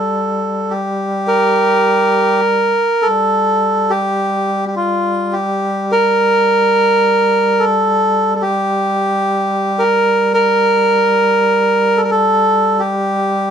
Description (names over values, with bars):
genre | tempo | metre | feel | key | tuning
caucasian folk, Caucasian lament | 53 BPM | 4/4 | rubato | G minor | A4 = 440 Hz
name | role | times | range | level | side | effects
melodica | melody | 0.0-13.5 s | F4 to Bb4 | -13 LUFS | right 1 dB | none
warm duduk | drone | 0.0-13.5 s | G3 | -22 LUFS | left 2 dB | none
room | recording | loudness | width
light reverb | none | -12 LUFS | side -8 dB against mid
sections
0.0-3.0 A section; 3.0-13.5 B section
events
none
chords
none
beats
0.70 1.86 | 3.02 4.18 5.33 6.46 | 7.59 8.70 9.79 10.88 | 11.97 13.06